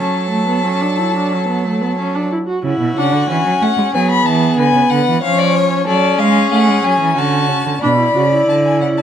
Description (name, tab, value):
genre	classical, baroque-style fugue for string quartet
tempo	92 BPM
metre	4/4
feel	straight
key	F# minor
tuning	A4 = 439 Hz
part	rich violin	melody	0.0-9.0 s	C#5 to B5	-18 LUFS	left 5 dB	none
part	rich violin	second line	0.0-9.0 s	F#4 to D5	-20 LUFS	left 2 dB	none
part	warm viola	accompaniment	0.0-9.0 s	A3 to F#4	-18 LUFS	right 1 dB	none
part	rich cello	bass	0.0-9.0 s	B2 to A3	-17 LUFS	right 4 dB	none
room	light reverb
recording	dark, warm production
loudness	-12 LUFS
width	side -9 dB against mid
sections	0.0-2.6 A section; 2.6-7.8 B section; 7.8-9.0 A section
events	none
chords	0.0 F#m; 2.6 F#5; 3.9 G#m7b5; 5.2 C#/E#; 6.5 F#m; 7.8 Bm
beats	0.64 1.30 1.97 | 2.63 3.29 3.94 4.58 | 5.22 5.87 6.51 7.16 | 7.82 8.47